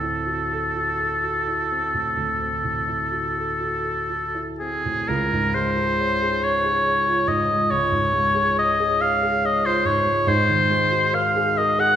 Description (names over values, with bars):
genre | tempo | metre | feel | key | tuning
classical, impressionist duo for oboe and grand piano | 40-48 BPM (dotted quarters) | 12/8 | rubato | unclear | A4 = 440 Hz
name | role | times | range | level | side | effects
clear oboe | melody | 0.0-12.0 s | Ab4 to Gb5 | -20 LUFS | left 1 dB | none
dark baby grand piano | accompaniment | 0.0-12.0 s | Db2 to Db5 | -25 LUFS | right 1 dB | none
room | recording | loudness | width
wet recital hall reverb, RT60 1.7 s | recorded in a church or concert hall | -19 LUFS | side -9 dB against mid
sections
0.0-5.1 A section; 5.1-12.0 A section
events
none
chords
0.0 D9; 5.1 Dbmaj7; 10.3 Ab13